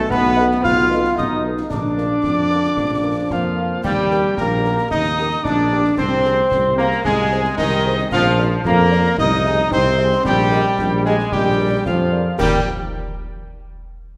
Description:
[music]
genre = military-style march for wind band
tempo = 112 BPM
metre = 2/4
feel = straight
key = Eb major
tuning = A4 = 440 Hz
[part]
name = warm cornet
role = melody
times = 0.0-12.6 s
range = Eb4 to F5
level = -28 LUFS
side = equal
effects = none
[part]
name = mellow piccolo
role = second line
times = 0.0-12.7 s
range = Eb5 to F6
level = -26 LUFS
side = equal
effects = none
[part]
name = warm trombone section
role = sustained chords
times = 0.0-12.6 s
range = Eb3 to F4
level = -21 LUFS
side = equal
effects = none
[part]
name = dark tuba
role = bass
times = 0.1-12.6 s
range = Bb1 to F2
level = -23 LUFS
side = equal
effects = none
[part]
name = concert snare drum, concert bass drum and clash cymbals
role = drums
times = 0.1-12.7 s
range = none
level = -31 LUFS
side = equal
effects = none
[part]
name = warm French horn section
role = accompaniment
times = 0.4-12.6 s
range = F4 to Eb5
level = -31 LUFS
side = equal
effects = none
[part]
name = warm euphonium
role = second line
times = 2.2-3.8 s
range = D3 to Bb3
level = -33 LUFS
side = equal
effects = none
[sound]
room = wet concert hall reverb, RT60 2.1 s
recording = recorded in a church or concert hall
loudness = -18 LUFS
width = mono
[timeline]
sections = 0.0-12.4 A section; 12.4-13.5 B section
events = none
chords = 0.0 B7; 1.7 Bb; 3.8 Eb; 6.0 Ab/C; 8.1 Bb; 9.2 Ab/C; 10.3 Eb/Bb; 11.3 Bb7; 12.4 Eb

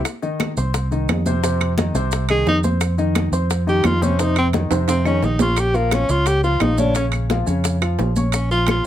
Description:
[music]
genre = Afro-Cuban jazz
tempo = 174 BPM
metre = 4/4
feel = straight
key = unclear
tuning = A4 = 439 Hz
[part]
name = bongos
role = percussion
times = 0.1-8.9 s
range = none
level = -29 LUFS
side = left 10 dB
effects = none
[part]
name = claves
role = percussion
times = 0.1-8.9 s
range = none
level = -30 LUFS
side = right 2 dB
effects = none
[part]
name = congas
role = percussion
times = 0.1-8.9 s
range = none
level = -26 LUFS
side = left 1 dB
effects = none
[part]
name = maracas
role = percussion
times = 0.1-8.9 s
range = none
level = -32 LUFS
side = right 6 dB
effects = none
[part]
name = timbales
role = percussion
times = 0.1-8.8 s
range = none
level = -26 LUFS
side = right 8 dB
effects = none
[part]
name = warm concert grand piano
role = accompaniment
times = 0.2-8.8 s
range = C3 to Db6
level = -24 LUFS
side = left 2 dB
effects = none
[part]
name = fingered electric bass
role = bass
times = 0.6-8.8 s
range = Bb1 to F2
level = -20 LUFS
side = equal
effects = none
[part]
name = breathy tenor saxophone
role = melody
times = 2.3-8.9 s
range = Bb3 to Ab4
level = -20 LUFS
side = equal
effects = none
[sound]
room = light reverb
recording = close, detailed microphones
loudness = -16 LUFS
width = side -11 dB against mid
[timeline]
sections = 0.1-8.9 A section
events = tenor saxophone solo 0.0-8.9; drum fill 4.7-5.6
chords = 0.1 F5; 5.6 Bbm

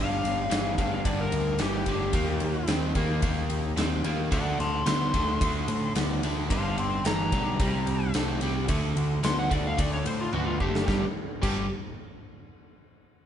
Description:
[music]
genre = blues rock power trio and southern rock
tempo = 110 BPM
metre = 4/4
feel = straight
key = G minor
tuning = A4 = 440 Hz
[part]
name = overdriven slide guitar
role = melody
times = 0.0-11.7 s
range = F4 to C6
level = -31 LUFS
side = left 2 dB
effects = none
[part]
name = overdriven electric guitar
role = riff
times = 0.0-11.7 s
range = G2 to C4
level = -30 LUFS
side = equal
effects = none
[part]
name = growling picked electric bass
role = bass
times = 0.0-11.7 s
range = F#1 to A2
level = -30 LUFS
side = equal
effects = overdrive
[part]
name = huge arena drum kit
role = drums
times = 0.2-11.6 s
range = crash cymbal, kick drum, ride cymbal, snare drum, toms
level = -30 LUFS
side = equal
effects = none
[sound]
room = moderate stone room reverb, RT60 1.2 s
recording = band playing live in one room, nothing above 10.7 kHz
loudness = -24 LUFS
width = side -9 dB against mid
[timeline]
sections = 0.0-10.9 A section; 10.9-13.1 B section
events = drum fill 10.3-10.9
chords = 0.0 G5; 2.1 Eb; 4.3 D5; 6.5 Gm; 7.6 C5; 8.7 D; 10.9 G5

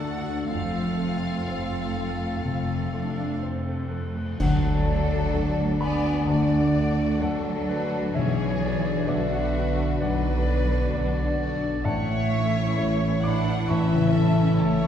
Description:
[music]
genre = cinematic, emotional film score for orchestra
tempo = 63 BPM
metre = 4/4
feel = uneven beats, rubato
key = unclear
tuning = A4 = 443 Hz
[part]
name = rich symphonic violin section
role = melody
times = 0.0-14.9 s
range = E4 to F#5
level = -39 LUFS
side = left 2 dB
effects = none
[part]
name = clear clarinet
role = second line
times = 0.0-14.9 s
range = C4 to F#5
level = -35 LUFS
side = left 2 dB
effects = none
[part]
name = warm oboe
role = second line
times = 0.0-4.0 s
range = A4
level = -39 LUFS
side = right 2 dB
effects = none
[part]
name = warm symphonic violin section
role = second line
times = 0.0-14.9 s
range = F4 to F#5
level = -34 LUFS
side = left 2 dB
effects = none
[part]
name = dark baby grand piano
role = accompaniment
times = 0.0-14.9 s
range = A1 to D6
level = -29 LUFS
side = left 2 dB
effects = none
[part]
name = warm symphonic viola section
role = accompaniment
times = 0.0-14.9 s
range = D3 to E4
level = -35 LUFS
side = equal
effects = none
[part]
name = concert harp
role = arpeggios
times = 0.0-14.9 s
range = A2 to C#6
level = -30 LUFS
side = left 2 dB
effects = none
[part]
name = clear symphonic cello section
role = bass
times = 0.0-14.9 s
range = D2 to D4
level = -33 LUFS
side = right 2 dB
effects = none
[part]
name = rich symphonic double bass section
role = bass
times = 0.0-14.9 s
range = F1 to D2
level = -29 LUFS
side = right 2 dB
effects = none
[part]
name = cymbal swell, clash cymbals and concert bass drum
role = percussion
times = 0.5-6.2 s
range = none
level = -31 LUFS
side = equal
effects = none
[part]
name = hollow small flute group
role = second line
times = 4.4-14.9 s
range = B4 to B5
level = -34 LUFS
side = left 1 dB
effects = none
[part]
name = dark French horn section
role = sustained chords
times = 4.4-14.9 s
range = D3 to E4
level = -30 LUFS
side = equal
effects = none
[sound]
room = wet scoring stage reverb, RT60 1.6 s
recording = heard from further back in the room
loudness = -22 LUFS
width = side -9 dB against mid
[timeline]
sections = 0.0-4.4 A section; 4.4-14.9 B section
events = band accent 4.4-5.3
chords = 0.5 F; 4.4 D; 8.1 Bmadd9; 11.8 A

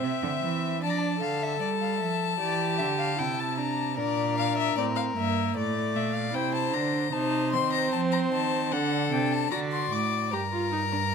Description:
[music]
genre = classical, baroque-style fugue for string quartet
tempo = 76 BPM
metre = 4/4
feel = straight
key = unclear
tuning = A4 = 439 Hz
[part]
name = warm violin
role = melody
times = 0.0-11.1 s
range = D5 to D6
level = -30 LUFS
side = left 12 dB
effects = none
[part]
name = rich violin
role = second line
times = 0.0-11.1 s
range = A4 to Bb5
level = -32 LUFS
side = left 4 dB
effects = none
[part]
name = warm viola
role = accompaniment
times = 0.0-11.0 s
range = A3 to A4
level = -30 LUFS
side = right 2 dB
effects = none
[part]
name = rich cello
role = bass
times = 0.0-11.1 s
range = G2 to G3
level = -31 LUFS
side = right 7 dB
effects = none
[sound]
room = moderate recital hall reverb, RT60 1.4 s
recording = close, detailed microphones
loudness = -25 LUFS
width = side -6 dB against mid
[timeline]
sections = 0.0-11.1 A section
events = none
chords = 0.0 C; 0.8 Dm; 2.4 C; 4.0 Bb; 5.6 Am; 7.1 Adim/C; 8.7 D7; 10.3 Gm

